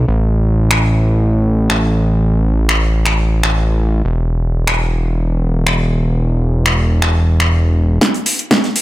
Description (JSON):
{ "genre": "progressive house", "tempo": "121 BPM", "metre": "4/4", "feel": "straight", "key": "unclear", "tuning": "A4 = 438 Hz", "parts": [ { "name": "fat analog bass", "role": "bass", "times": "0.0-8.0 s", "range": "E1 to A1", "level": "-13 LUFS", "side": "equal", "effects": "tube saturation, sidechain pumping" }, { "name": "deep house drum kit", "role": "drums", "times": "0.7-8.8 s", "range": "finger snaps, hi-hat, snare drum", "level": "-16 LUFS", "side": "equal", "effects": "overdrive" }, { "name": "electronic kick drum", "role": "drums", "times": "8.0-8.6 s", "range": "none", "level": "-21 LUFS", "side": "equal", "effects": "high-pass filter on kick" }, { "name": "modern studio drum kit", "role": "drums", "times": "8.0-8.8 s", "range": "hi-hat, snare drum", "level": "-25 LUFS", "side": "right 3 dB", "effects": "high-pass filter on hats, high-pass filter on snare, high-pass filter on room" } ], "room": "little or no reverb", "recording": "none", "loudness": "-12 LUFS", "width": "side -16 dB against mid", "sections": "0.0-8.0 A section", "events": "drum fill 8.0-8.8", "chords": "none", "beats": "| 0.08 0.58 1.07 1.57 | 2.06 2.56 3.06 3.55 | 4.05 4.54 5.04 5.54 | 6.03 6.53 7.02 7.52 | 8.01 8.51" }